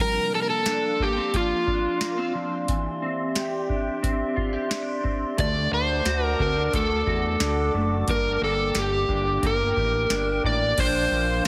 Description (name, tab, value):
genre	dream pop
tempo	89 BPM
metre	4/4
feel	straight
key	Bb lydian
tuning	A4 = 440 Hz
part	overdriven slide guitar	melody	0.0-11.5 s	F4 to D5	-27 LUFS	equal	digital delay
part	warbly tape-like pad	sustained chords	0.0-11.5 s	Bb3 to D6	-33 LUFS	equal	chorus, built-in reverb
part	mellow electric guitar	arpeggios	0.0-11.5 s	E3 to G4	-32 LUFS	equal	ensemble chorus, digital delay
part	booming analog drum machine	drums	0.7-11.5 s	crash cymbal, hi-hat, kick drum, ride cymbal, snare drum, tambourine	-31 LUFS	equal	none
part	fat analog bass	bass	5.4-11.5 s	F#1 to E2	-30 LUFS	equal	none
room	moderate plate reverb, RT60 2.5 s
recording	heavily compressed radio sound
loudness	-24 LUFS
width	mono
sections	0.0-10.8 A section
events	none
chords	0.0 Bbadd9; 2.7 Cadd9; 5.4 D; 8.1 Gm; 10.8 Bbadd9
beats	0.66 1.34 2.01 | 2.68 3.36 4.03 4.71 | 5.38 6.05 6.73 7.40 | 8.08 8.75 9.43 10.10 | 10.77 11.45